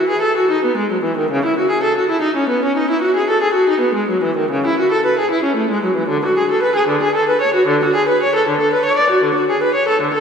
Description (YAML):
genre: classical, baroque-style suite movement for unaccompanied viola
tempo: 76 BPM (dotted quarters)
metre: 12/8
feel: rubato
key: unclear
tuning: A4 = 439 Hz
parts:
  - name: warm viola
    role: solo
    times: 0.0-10.2 s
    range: C#3 to D5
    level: -14 LUFS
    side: equal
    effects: none
room: wet concert hall reverb, RT60 2.5 s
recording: recorded in a church or concert hall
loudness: -14 LUFS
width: side -6 dB against mid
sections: 0.0-10.2 A section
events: none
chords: none